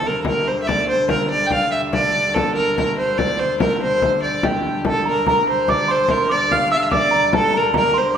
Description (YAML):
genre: medieval dance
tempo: 96 BPM (dotted quarters)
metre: 6/8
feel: straight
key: G dorian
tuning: A4 = 440 Hz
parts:
  - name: rich fiddle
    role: melody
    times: 0.0-8.2 s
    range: G4 to G5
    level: -18 LUFS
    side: equal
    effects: none
  - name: warm hurdy-gurdy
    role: drone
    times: 0.0-8.2 s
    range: G2 to D3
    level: -28 LUFS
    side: left 1 dB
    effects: none
  - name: frame drum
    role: percussion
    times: 0.1-8.1 s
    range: none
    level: -23 LUFS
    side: left 2 dB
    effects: none
  - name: small celesta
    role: second line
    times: 4.9-8.2 s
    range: A5 to F6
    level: -20 LUFS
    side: right 2 dB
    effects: none
room: wet recital hall reverb, RT60 1.4 s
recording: recorded in a church or concert hall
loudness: -16 LUFS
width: side -8 dB against mid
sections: 0.0-5.7 A section; 5.7-8.2 A section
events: none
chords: none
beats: 0.06 | 0.69 1.31 | 1.93 2.56 | 3.18 3.81 | 4.43 5.05 | 5.68 6.30 | 6.93 7.55 | 8.17